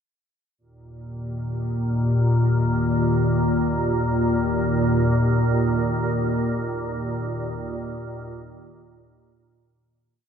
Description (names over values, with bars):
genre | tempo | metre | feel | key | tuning
ambient | free time | none | none | unclear | A4 = 440 Hz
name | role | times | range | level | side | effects
organ-like drone | solo | 1.0-10.3 s | Eb2 to Bb2 | -21 LUFS | equal | ensemble chorus, built-in reverb
room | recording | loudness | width
wet cathedral reverb, RT60 5.8 s | in a vast, echoing space | -20 LUFS | side -7 dB against mid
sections
0.6-10.2 A section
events
fade-out 5.4-10.2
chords
0.6 Eb5